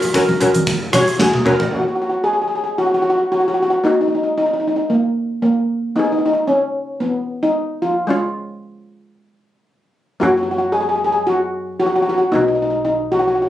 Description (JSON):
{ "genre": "calypso", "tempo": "113 BPM", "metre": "4/4", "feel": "swing 54% on 16ths", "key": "F# major", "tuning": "A4 = 440 Hz", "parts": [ { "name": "steel pan", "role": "accompaniment", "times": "0.0-13.5 s", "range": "G#3 to C#5", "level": "-18 LUFS", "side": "left 1 dB", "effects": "none" }, { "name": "upright bass", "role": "bass", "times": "0.0-1.7, 10.2-13.5 s", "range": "B1 to F#3", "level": "-30 LUFS", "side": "right 1 dB", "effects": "none" }, { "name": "gated 80s drum kit", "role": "drums", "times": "0.0-1.7 s", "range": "hi-hat, kick drum, rim click, snare drum, toms", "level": "-19 LUFS", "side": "equal", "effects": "none" }, { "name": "congas", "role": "percussion", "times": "0.3-1.6 s", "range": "none", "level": "-21 LUFS", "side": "equal", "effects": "none" }, { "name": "steel pan", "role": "melody", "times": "1.7-13.5 s", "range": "A#3 to G#4", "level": "-16 LUFS", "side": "equal", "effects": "none" } ], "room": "light reverb", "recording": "recorded on a phone in the room, studio ambience", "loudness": "-15 LUFS", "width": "side -12 dB against mid", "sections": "0.0-1.7 A section; 1.7-13.5 B section", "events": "drum fill 1.2-1.7", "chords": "0.0 F#; 3.9 D#m; 6.0 G#m; 8.1 C#; 10.2 F#; 12.3 B" }